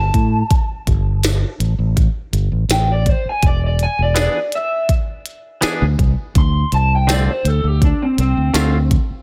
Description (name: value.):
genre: straight-eighth soul blues.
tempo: 82 BPM.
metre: 4/4.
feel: straight.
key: unclear.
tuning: A4 = 440 Hz.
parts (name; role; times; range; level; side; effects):
electric guitar through a small old amp; melody; 0.0-8.9 s; C4 to C6; -23 LUFS; equal; subtle chorus.
fingered electric bass; bass; 0.0-9.1 s; E1 to A2; -19 LUFS; equal; none.
glitchy drum kit; drums; 0.1-9.1 s; hi-hat, kick drum, snare drum, tambourine; -20 LUFS; equal; none.
direct-recorded clean electric guitar; stabs; 4.1-8.8 s; D3 to G#4; -25 LUFS; equal; none.
room: little or no reverb.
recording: none.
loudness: -17 LUFS.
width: mono.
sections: 0.0-9.2 A section.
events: none.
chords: 0.0 Gsus2; 3.4 E7; 6.3 Dm7.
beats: | 0.51 1.24 1.97 2.70 | 3.43 4.16 4.89 5.62 | 6.35 7.08 7.81 8.54.